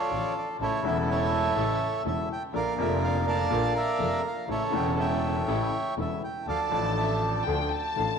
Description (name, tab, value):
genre	tango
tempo	123 BPM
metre	4/4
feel	rubato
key	unclear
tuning	A4 = 440 Hz
part	bandoneon	melody	0.0-8.1 s	E4 to A5	-28 LUFS	right 3 dB	none
part	warm upright piano	accompaniment	0.1-8.2 s	E1 to F4	-31 LUFS	left 10 dB	none
part	dark studio string section	stabs	0.1-8.2 s	C#4 to Bb4	-37 LUFS	right 9 dB	none
part	clear double bass	bass	0.1-8.2 s	E1 to D2	-32 LUFS	right 2 dB	none
part	rich chamber violin section	second line	6.5-8.2 s	G5 to A5	-31 LUFS	left 6 dB	slapback echo
room	wet echo chamber reverb, RT60 2.6 s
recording	1960s-style stereo with parts hard left and right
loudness	-25 LUFS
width	side -6 dB against mid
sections	0.0-8.2 A section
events	none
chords	0.0 Dm; 0.6 A; 2.5 Bb; 4.5 A; 6.5 Dm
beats	0.11 | 0.60 1.08 1.56 2.05 | 2.54 3.02 3.51 4.00 | 4.49 4.97 5.47 5.97 | 6.47 6.97 7.47 7.96